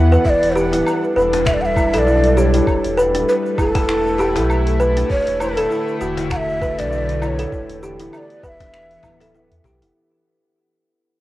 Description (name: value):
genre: organic downtempo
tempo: 99 BPM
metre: 4/4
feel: swing 56% on 16ths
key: E dorian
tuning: A4 = 441 Hz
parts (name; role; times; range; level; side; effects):
- bowed-like drone; sustained chords; 0.0-9.9 s; D3 to F#5; -25 LUFS; left 1 dB; built-in reverb, sidechain pumping, cassette tape
- kalimba; arpeggios; 0.0-9.9 s; D4 to E5; -19 LUFS; equal; vintage 12-bit sampler grit, cassette tape, tape echo
- warm sub bass; bass; 0.0-9.9 s; D1 to E2; -21 LUFS; equal; sidechain pumping
- deep house drum kit; drums; 0.1-9.9 s; finger snaps, hi-hat, shaker, woodblock; -29 LUFS; equal; cassette tape
- breathy mellow ney; melody; 0.2-9.6 s; A4 to F#5; -21 LUFS; right 1 dB; cassette tape, tape echo
- electronic kick drum; drums; 0.3-8.7 s; none; -22 LUFS; equal; cassette tape
- cajon; percussion; 1.3-9.8 s; none; -29 LUFS; left 4 dB; none
room: moderate spring reverb, RT60 2.4 s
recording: home recording on cassette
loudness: -15 LUFS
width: side -16 dB against mid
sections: 0.0-9.9 A section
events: fade-out 3.5-9.9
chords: 0.3 G69; 5.1 D5; 7.5 Em9